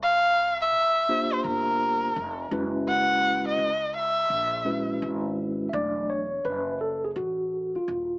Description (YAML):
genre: hip hop, jazz-hop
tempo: 84 BPM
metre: 4/4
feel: swing 65% on 16ths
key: unclear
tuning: A4 = 442 Hz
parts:
  - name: dark erhu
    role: melody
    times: 0.0-5.0 s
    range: Bb4 to F#5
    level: -23 LUFS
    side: equal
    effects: none
  - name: upright bass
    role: bass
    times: 0.0-8.2 s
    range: D#1 to C#2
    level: -38 LUFS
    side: equal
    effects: none
  - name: mellow tine electric piano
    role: accompaniment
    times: 1.1-8.2 s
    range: F#3 to E5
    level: -28 LUFS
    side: equal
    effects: medium stereo tremolo
room: moderate plate reverb, RT60 2.9 s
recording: small speaker sound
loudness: -23 LUFS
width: side -28 dB against mid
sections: 0.0-5.7 A section; 5.7-8.2 B section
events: tine electric piano solo 5.7-8.2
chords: 0.0 C9sus4; 2.5 F#9sus4; 5.7 E9sus4